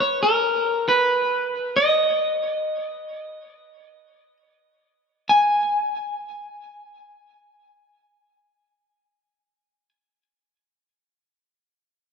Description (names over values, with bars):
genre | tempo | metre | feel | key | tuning
dream pop | free time | none | none | G# minor | A4 = 439 Hz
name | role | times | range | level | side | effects
clean electric guitar | melody | 0.0-9.9 s | A#4 to G#5 | -19 LUFS | equal | ping-pong delay
room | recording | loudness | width
wet scoring stage reverb, RT60 2.1 s | none | -19 LUFS | side -6 dB against mid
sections
0.0-5.3 A section; 5.3-8.8 B section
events
none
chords
none